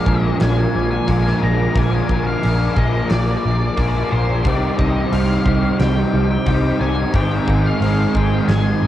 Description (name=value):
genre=rock, shoegaze and dream pop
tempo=89 BPM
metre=4/4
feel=straight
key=unclear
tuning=A4 = 442 Hz
part: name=octave-fuzz lead guitar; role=melody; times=0.0-8.9 s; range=C5 to Bb5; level=-27 LUFS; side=equal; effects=distortion, cassette tape, tape echo
part: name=soft string machine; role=sustained chords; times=0.0-8.9 s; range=Eb4 to D6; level=-28 LUFS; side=left 1 dB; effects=ensemble chorus, cassette tape
part: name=direct-recorded clean electric guitar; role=arpeggios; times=0.0-8.9 s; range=F3 to Eb4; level=-32 LUFS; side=right 7 dB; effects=none
part: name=crunchy overdriven guitar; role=riff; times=0.0-8.9 s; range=Ab2 to Ab4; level=-22 LUFS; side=left 7 dB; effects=analog chorus, cassette tape
part: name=overdriven semi-hollow guitar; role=riff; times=0.0-8.9 s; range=Ab2 to Ab4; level=-21 LUFS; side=right 5 dB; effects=reverse reverb, cassette tape
part: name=vintage muted picked electric bass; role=bass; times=0.1-8.9 s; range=Ab1 to C2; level=-20 LUFS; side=equal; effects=none
part: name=huge arena drum kit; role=drums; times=0.1-8.6 s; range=hi-hat, kick drum, snare drum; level=-24 LUFS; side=equal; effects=cassette tape
room=little or no reverb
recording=home recording on cassette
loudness=-15 LUFS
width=side -12 dB against mid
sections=0.0-8.9 A section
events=none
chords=0.0 Bb7; 4.4 Cmadd9; 7.1 Ab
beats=0.41 1.08 | 1.75 2.43 3.10 3.77 | 4.45 5.12 5.79 6.47 | 7.14 7.82 8.49